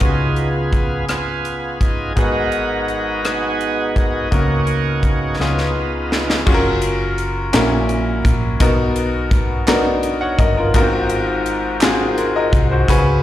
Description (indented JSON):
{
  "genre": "slow gospel",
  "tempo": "56 BPM (dotted quarters)",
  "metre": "6/8",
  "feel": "straight",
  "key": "F# major",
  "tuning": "A4 = 440 Hz",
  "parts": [
    { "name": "bright grand piano", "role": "accompaniment", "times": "0.0-13.2 s", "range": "G#2 to F#5", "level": "-19 LUFS", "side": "left 1 dB", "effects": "none" },
    { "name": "bright tonewheel organ", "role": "sustained chords", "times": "0.0-6.4 s", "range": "B2 to A#4", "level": "-21 LUFS", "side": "right 2 dB", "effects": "slow rotary speaker, overdrive" },
    { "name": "hollow-body short-scale fingered electric bass", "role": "bass", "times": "0.0-13.2 s", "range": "F#1 to C#2", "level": "-22 LUFS", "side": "equal", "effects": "none" },
    { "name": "crisp fusion drum kit", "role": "drums", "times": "0.0-13.1 s", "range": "crash cymbal, hi-hat, kick drum, rim click, snare drum", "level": "-18 LUFS", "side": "equal", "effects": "none" },
    { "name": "group handclap", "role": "percussion", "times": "7.5-12.1 s", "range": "none", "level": "-27 LUFS", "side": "right 5 dB", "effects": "none" }
  ],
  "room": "light reverb",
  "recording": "live gig heard through the venue's PA, recital hall reverb",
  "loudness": "-15 LUFS",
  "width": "side -13 dB against mid",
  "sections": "0.0-6.5 A section; 6.5-13.2 B section",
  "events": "tonewheel organ solo 0.0-6.5; drum fill 5.4-6.5",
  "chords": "0.0 C#7; 2.2 G#m7; 4.3 F#/C#; 5.4 C#7; 6.5 F#maj7; 7.5 F#7/A#; 8.6 Bmaj7; 10.7 G#13"
}